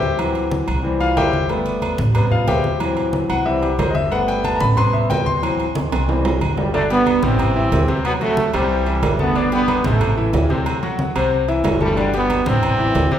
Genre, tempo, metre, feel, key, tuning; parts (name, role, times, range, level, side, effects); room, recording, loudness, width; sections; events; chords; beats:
latin, salsa; 183 BPM; 4/4; straight; G major; A4 = 441 Hz
clear concert grand piano; accompaniment; 0.0-13.2 s; C3 to C6; -20 LUFS; left 2 dB
upright bass; bass; 0.0-13.2 s; G1 to D2; -22 LUFS; equal
congas; percussion; 0.0-13.2 s; -26 LUFS; equal
agogo bells and timbales; percussion; 0.2-13.1 s; -25 LUFS; right 4 dB
bright trombone section; melody; 6.6-13.2 s; B2 to C4; -19 LUFS; right 2 dB
wet recital hall reverb, RT60 1.6 s; recorded in a church or concert hall; -16 LUFS; side -10 dB against mid
0.0-6.7 A section; 6.7-13.2 B section
grand piano solo 0.0-6.7; drum fill 5.8-6.7
0.2 D7; 0.8 C; 1.5 Gadd9; 2.2 Am7; 2.8 D7; 3.5 C; 4.1 Gadd9; 4.8 Am7; 5.4 D7; 6.1 C; 6.7 Gadd9; 7.4 Am7; 8.0 D7; 8.7 Gadd9; 10.0 Am; 10.7 D7; 11.3 Gadd9; 12.6 Am7
| 0.19 0.52 0.84 1.17 | 1.50 1.82 2.15 2.48 | 2.81 3.13 3.46 3.79 | 4.12 4.45 4.77 5.10 | 5.43 5.76 6.08 6.41 | 6.74 7.07 7.39 7.72 | 8.05 8.37 8.70 9.03 | 9.36 9.68 10.01 10.34 | 10.66 10.99 11.32 11.64 | 11.97 12.30 12.63 12.95